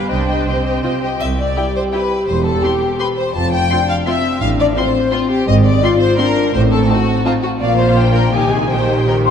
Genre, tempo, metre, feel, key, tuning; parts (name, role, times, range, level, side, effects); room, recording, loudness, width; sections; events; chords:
cinematic, playful, whimsical film cue; 168 BPM; 3/4; straight; C major; A4 = 439 Hz
rich studio violin section; melody; 0.0-9.3 s; F5 to C6; -25 LUFS; left 3 dB
clear studio violin section; second line; 0.0-9.3 s; F4 to A5; -19 LUFS; left 3 dB
rich studio viola section; accompaniment; 0.0-9.3 s; Eb3 to C5; -24 LUFS; right 1 dB
rich studio cello section; bass; 0.0-9.3 s; C2 to D4; -21 LUFS; right 2 dB
rich studio double bass section; bass; 0.0-9.3 s; E1 to C2; -19 LUFS; right 2 dB
triangle; percussion; 1.2-1.9 s; -42 LUFS; left 4 dB
mellow French horn section; sustained chords; 1.6-9.3 s; Bb3 to G4; -19 LUFS; left 3 dB
mellow hollow small flute group; second line; 9.3 s; C6; -11 LUFS; left 8 dB
wet concert hall reverb, RT60 2.3 s; dark, warm production; -13 LUFS; side -8 dB against mid
0.0-1.2 A section; 1.2-9.3 B section
0.1 Cm; 1.2 C; 2.3 C/E; 3.3 F5; 4.4 F/A; 5.5 Fm/Ab; 6.5 Adim7; 7.6 Bb; 8.3 Ab/C; 8.7 Eb/Bb